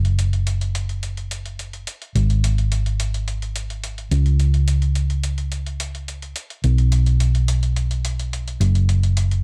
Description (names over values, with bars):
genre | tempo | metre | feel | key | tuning
nu-disco, nu disco | 107 BPM | 4/4 | straight | unclear | A4 = 439 Hz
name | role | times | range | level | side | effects
hollow-body short-scale fingered electric bass | bass | 0.0-9.4 s | F#1 to C#2 | -21 LUFS | equal | tube saturation
electronic hi-hat | drums | 0.0-9.4 s | none | -34 LUFS | equal | small room ambience
room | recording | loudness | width
little or no reverb | dark, warm production | -21 LUFS | mono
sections
0.0-9.4 A section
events
none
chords
none